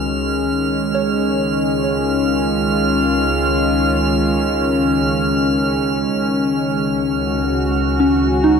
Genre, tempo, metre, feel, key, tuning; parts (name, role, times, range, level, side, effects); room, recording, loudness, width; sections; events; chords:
ambient; 68 BPM; 3/4; straight; Db major; A4 = 438 Hz
warm analog pad; sustained chords; 0.0-8.6 s; Eb3 to Gb4; -17 LUFS; left 1 dB; chorus
muted symphonic double bass section; bass; 0.0-8.6 s; Db2; -25 LUFS; equal
drifting glass-harmonics texture; texture; 0.0-8.6 s; F6; -23 LUFS; right 4 dB; chorus, built-in reverb
soft synth bell; arpeggios; 0.9-8.6 s; Db4 to Db5; -20 LUFS; right 1 dB; chorus, phaser, tape echo
wet lush hall reverb, RT60 2.6 s; -15 LUFS; side -6 dB against mid
0.0-8.6 A section
fade-in on double bass section 0.0-8.6
0.0 Ebmadd9/Db; 0.9 Dbadd9; 6.2 Ebmadd9/Db